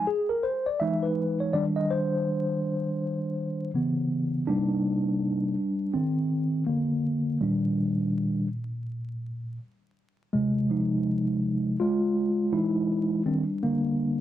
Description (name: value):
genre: hip hop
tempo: 82 BPM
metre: 4/4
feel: swing 62% on 16ths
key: Eb major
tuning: A4 = 440 Hz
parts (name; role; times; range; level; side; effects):
- mellow tine electric piano; solo; 0.0-14.2 s; Bb2 to E5; -25 LUFS; equal; medium stereo tremolo
room: digital ambience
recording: dry, close 1970s-style studio recording, vinyl crackle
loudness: -25 LUFS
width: side -12 dB against mid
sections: 0.0-4.5 A section; 4.5-14.2 B section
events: tine electric piano solo 0.0-4.5, 4.5-14.2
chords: 0.0 Fm (rootless); 0.8 Emaj7; 1.6 Ebmaj7; 3.7 Dbm7; 4.5 Cm9; 7.4 Ebmaj7; 10.3 Fm7; 12.5 Emaj7; 13.3 Ebmaj7